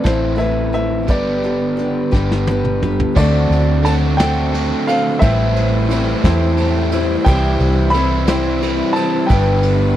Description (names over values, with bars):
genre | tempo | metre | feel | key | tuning
folk rock and heartland rock | 58 BPM (dotted quarters) | 6/8 | straight | unclear | A4 = 440 Hz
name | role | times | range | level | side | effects
warm grand piano | melody | 0.0-10.0 s | C5 to B5 | -22 LUFS | equal | none
picked steel-string acoustic guitar | accompaniment | 0.0-10.0 s | A2 to C5 | -22 LUFS | left 4 dB | none
crunchy overdriven guitar | riff | 0.0-10.0 s | G2 to A4 | -20 LUFS | right 1 dB | none
hollow-body short-scale fingered electric bass | bass | 0.0-10.0 s | G1 to E2 | -18 LUFS | equal | none
soft brush drum kit | drums | 0.1-9.8 s | crash cymbal, hi-hat, kick drum, ride cymbal, snare drum, toms | -22 LUFS | equal | none
bright studio string section | sustained chords | 3.1-10.0 s | G3 to C5 | -29 LUFS | equal | none
bright upright piano | accompaniment | 3.2-10.0 s | G4 to A5 | -30 LUFS | right 6 dB | none
room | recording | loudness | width
little or no reverb | dry, close 1970s-style studio recording | -14 LUFS | side -12 dB against mid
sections
0.0-3.2 A section; 3.2-10.0 B section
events
drum fill 2.1-3.2; upright piano fill 6.2-7.3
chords
0.0 Amadd9; 1.1 G; 3.2 D7sus4; 5.2 Am7; 7.3 C; 9.3 G6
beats
0.04 | 1.08 2.12 | 3.16 4.19 | 5.22 6.24 | 7.26 8.28 | 9.30